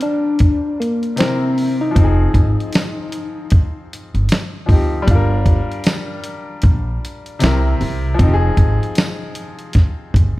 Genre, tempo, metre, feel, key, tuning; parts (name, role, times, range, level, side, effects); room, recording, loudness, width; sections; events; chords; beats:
lo-fi hip hop; 77 BPM; 4/4; swing 59% on 16ths; F dorian; A4 = 440 Hz
soft struck synth lead; melody; 0.0-4.7 s; Bb3 to Eb4; -20 LUFS; left 1 dB; chorus
bright upright piano; accompaniment; 0.0-10.4 s; C3 to Eb5; -23 LUFS; left 2 dB; cassette tape
dusty soul sampler-style drum kit; drums; 0.0-10.4 s; hi-hat, kick drum, snare drum; -15 LUFS; equal
tambourine; percussion; 1.2-9.2 s; -37 LUFS; right 2 dB
upright bass; bass; 2.0-10.3 s; F1 to D2; -18 LUFS; equal
little or no reverb; -14 LUFS; side -18 dB against mid
0.0-10.4 A section
break 0.0-2.0
0.0 Gm7; 1.2 C7; 2.0 Fm7; 5.1 Gm7; 7.4 C7; 8.2 Fm7
0.40 1.18 | 1.96 2.74 3.52 4.29 | 5.07 5.85 6.63 7.41 | 8.19 8.97 9.75